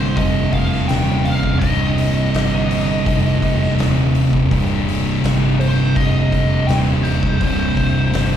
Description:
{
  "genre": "stoner and doom metal",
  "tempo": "83 BPM",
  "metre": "4/4",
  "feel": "straight",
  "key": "C minor",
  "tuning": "A4 = 442 Hz",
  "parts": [
    { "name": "fuzz lead guitar", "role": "melody", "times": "0.0-8.4 s", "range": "C5 to G5", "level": "-25 LUFS", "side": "left 1 dB", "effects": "wah, distortion, slapback echo, tape echo" },
    { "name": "thick fuzz guitar", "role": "riff", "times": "0.0-8.4 s", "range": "C2 to C3", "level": "-21 LUFS", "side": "left 6 dB", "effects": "distortion" },
    { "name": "thick fuzz guitar", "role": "riff", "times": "0.0-8.4 s", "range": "C2 to C3", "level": "-19 LUFS", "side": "right 5 dB", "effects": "distortion" },
    { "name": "fuzz fingered electric bass", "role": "bass", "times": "0.0-8.4 s", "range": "C1 to G1", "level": "-21 LUFS", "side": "equal", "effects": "overdrive" },
    { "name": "oversized low-tuned drum kit", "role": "drums", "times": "0.2-8.3 s", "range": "hi-hat, kick drum, snare drum", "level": "-22 LUFS", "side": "equal", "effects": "none" }
  ],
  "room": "little or no reverb",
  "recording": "live gig heard through the venue's PA, club reverb",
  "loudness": "-14 LUFS",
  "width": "side -9 dB against mid",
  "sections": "0.0-8.4 A section",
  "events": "none",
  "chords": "0.0 Cm",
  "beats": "0.17 0.89 | 1.61 2.33 3.06 3.78 | 4.51 5.23 5.96 6.68 | 7.41 8.13"
}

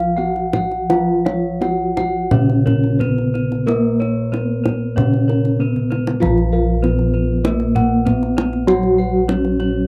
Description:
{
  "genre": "Javanese gamelan",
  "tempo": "83-98 BPM",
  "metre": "4/4",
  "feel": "straight",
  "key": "Bb pelog",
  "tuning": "A4 = 440 Hz",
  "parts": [
    { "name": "gamelan-type bronze metallophone", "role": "melody", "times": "0.0-9.9 s", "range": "Bb3 to Gb4", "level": "-23 LUFS", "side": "equal", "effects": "none" },
    { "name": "gamelan-type bronze metallophone", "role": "accompaniment", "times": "0.0-9.9 s", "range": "Db3 to Bb3", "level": "-25 LUFS", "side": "equal", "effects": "none" },
    { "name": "gamelan-type bossed gongs", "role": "arpeggios", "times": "0.0-9.6 s", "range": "Bb4 to Gb5", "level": "-29 LUFS", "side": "equal", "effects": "none" },
    { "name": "gamelan-type bronze metallophone", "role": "arpeggios", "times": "0.0-9.9 s", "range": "Bb4 to Gb5", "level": "-30 LUFS", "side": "equal", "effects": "none" },
    { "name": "gamelan-type bossed gongs", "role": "bass", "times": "0.0-9.9 s", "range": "Bb1 to Bb4", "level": "-22 LUFS", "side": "equal", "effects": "none" },
    { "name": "kendang", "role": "percussion", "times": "0.0-9.7 s", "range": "none", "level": "-26 LUFS", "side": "equal", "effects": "none" }
  ],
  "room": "light reverb",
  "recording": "dry, close 1970s-style studio recording",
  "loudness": "-17 LUFS",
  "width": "mono",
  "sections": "0.0-6.2 A section; 6.2-9.9 B section",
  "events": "drum fill 5.8-6.2",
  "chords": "none",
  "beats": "0.18 | 0.90 1.62 2.32 3.00 | 3.67 4.33 4.97 5.60 | 6.22 6.83 7.45 8.06 | 8.67 9.28"
}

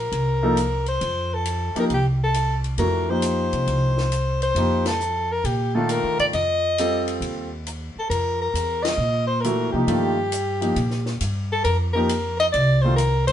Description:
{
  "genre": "modal jazz",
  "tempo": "135 BPM",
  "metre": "4/4",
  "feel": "swing 68% on 8ths",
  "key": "F mixolydian",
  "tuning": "A4 = 441 Hz",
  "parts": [
    { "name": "warm soprano saxophone", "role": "melody", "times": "0.0-13.3 s", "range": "G4 to Eb5", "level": "-23 LUFS", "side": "left 1 dB", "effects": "none" },
    { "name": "upright bass", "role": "bass", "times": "0.0-13.3 s", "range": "C2 to C3", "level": "-24 LUFS", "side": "equal", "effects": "none" },
    { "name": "compact cocktail drum kit", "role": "drums", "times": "0.1-13.3 s", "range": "hi-hat, kick drum, ride cymbal, snare drum", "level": "-34 LUFS", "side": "left 3 dB", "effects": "none" },
    { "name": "clear concert grand piano", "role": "accompaniment", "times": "0.4-13.0 s", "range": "Eb3 to A4", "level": "-24 LUFS", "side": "equal", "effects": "none" }
  ],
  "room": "moderate studio reverb, RT60 0.8 s",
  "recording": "band playing live in one room, nothing above 10.9 kHz",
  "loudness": "-20 LUFS",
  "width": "side -10 dB against mid",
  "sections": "0.0-13.3 A section",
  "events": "band accent 4.8, 8.8",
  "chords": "0.0 F7sus4; 4.6 Eb; 11.7 F7sus4",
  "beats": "0.12 0.56 | 1.01 1.45 1.89 2.34 | 2.78 3.22 3.67 4.11 | 4.55 5.00 5.44 5.89 | 6.33 6.77 7.22 7.66 | 8.10 8.55 8.99 9.44 | 9.88 10.32 10.77 11.21 | 11.65 12.10 12.54 12.98"
}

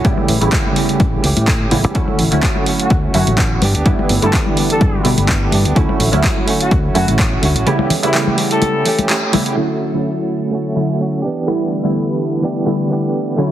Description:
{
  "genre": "filtered disco house",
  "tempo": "126 BPM",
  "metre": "4/4",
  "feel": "swing 54% on 16ths",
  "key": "D major",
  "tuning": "A4 = 440 Hz",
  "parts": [
    { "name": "funky polysynth comp", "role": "accompaniment", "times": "0.0-13.5 s", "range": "C#3 to E4", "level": "-18 LUFS", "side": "equal", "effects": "chorus, phaser, sidechain pumping, low-pass filter" },
    { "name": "direct-recorded clean electric guitar", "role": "riff", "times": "0.0-13.5 s", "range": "E3 to G4", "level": "-21 LUFS", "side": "right 3 dB", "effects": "tremolo, sidechain pumping, low-pass filter" },
    { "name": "fingered electric bass", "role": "bass", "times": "0.0-7.6 s", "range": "G1 to B2", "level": "-17 LUFS", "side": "equal", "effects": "sidechain pumping, low-pass filter" },
    { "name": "electronic kick drum", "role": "drums", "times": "0.0-7.3 s", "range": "none", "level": "-17 LUFS", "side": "equal", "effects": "overdrive" },
    { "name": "punchy analog drum machine", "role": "drums", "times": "0.0-9.5 s", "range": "handclaps, hi-hat", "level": "-20 LUFS", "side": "right 1 dB", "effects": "overdrive, sidechain pumping on hats, low-pass filter on hats, low-pass filter on snare, low-pass filter on room" },
    { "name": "egg shaker and congas", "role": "percussion", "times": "0.1-9.5 s", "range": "none", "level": "-23 LUFS", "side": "left 4 dB", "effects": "sidechain pumping on perc, low-pass filter on perc" },
    { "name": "warm horn section", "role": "melody", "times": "2.8-9.0 s", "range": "E4 to A4", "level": "-22 LUFS", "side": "left 2 dB", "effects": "sidechain pumping, low-pass filter, dub echo" }
  ],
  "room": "light reverb",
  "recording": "heavily compressed radio sound, multiband compression",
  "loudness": "-13 LUFS",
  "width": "side -12 dB against mid",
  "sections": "0.0-9.6 A section; 9.6-13.5 B section",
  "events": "filter sweep 0.0-9.6, 9.6-13.5; band accent 9.1",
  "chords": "0.0 A7; 2.0 Dmaj7; 3.6 G6; 5.8 Dmaj7; 7.7 A7; 9.6 Dmaj7; 11.2 G6",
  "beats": "| 0.05 0.52 1.00 1.48 | 1.95 2.43 2.90 3.38 | 3.86 4.33 4.81 5.29 | 5.76 6.24 6.71 7.19 | 7.67 8.14 8.62 9.10 | 9.57 10.05 10.52 11.00 | 11.48 11.95 12.43 12.90 | 13.38"
}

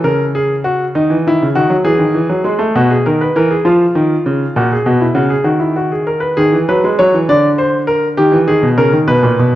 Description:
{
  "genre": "classical, baroque-style two-part invention for grand piano",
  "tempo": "67 BPM (dotted quarters)",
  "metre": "6/8",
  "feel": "straight",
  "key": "unclear",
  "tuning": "A4 = 439 Hz",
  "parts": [
    { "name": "clear concert grand piano", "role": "solo", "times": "0.0-9.6 s", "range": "A#2 to D5", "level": "-11 LUFS", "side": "equal", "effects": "none" }
  ],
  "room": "moderate recital hall reverb, RT60 1.6 s",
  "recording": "worn, warbling old tape, cassette tape, warbly pitch drift",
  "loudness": "-11 LUFS",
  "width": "side -14 dB against mid",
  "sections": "0.0-6.4 A section; 6.4-9.6 B section",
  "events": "none",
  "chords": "0.1 F#/C#; 1.0 C#madd9; 1.9 E; 2.8 B; 3.7 C#; 4.6 F#/A#; 5.5 B/D#; 6.4 G#m/D#; 7.3 A#/D; 8.2 D#",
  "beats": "0.06 | 0.97 1.87 | 2.76 3.65 | 4.55 5.46 | 6.37 7.29 | 8.19 9.09"
}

